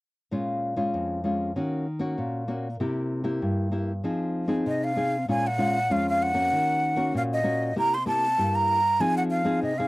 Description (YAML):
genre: samba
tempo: 97 BPM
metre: 4/4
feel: straight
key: Bb minor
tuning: A4 = 439 Hz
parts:
  - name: nylon-string guitar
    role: accompaniment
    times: 0.3-9.9 s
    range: F2 to Ab4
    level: -26 LUFS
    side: left 1 dB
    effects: none
  - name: breathy jazz flute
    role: melody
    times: 4.7-9.9 s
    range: Eb5 to C6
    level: -24 LUFS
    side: right 1 dB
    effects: none
room: moderate booth ambience, RT60 0.2 s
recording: dry, close 1970s-style studio recording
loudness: -23 LUFS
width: side -20 dB against mid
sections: 0.3-5.3 A section; 5.3-9.9 B section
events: none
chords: 0.3 Bbm7; 1.6 Ebm7; 2.8 C7; 4.0 Fm7; 5.3 Bbm7; 6.5 Ebm7; 7.8 C7; 9.0 Fm7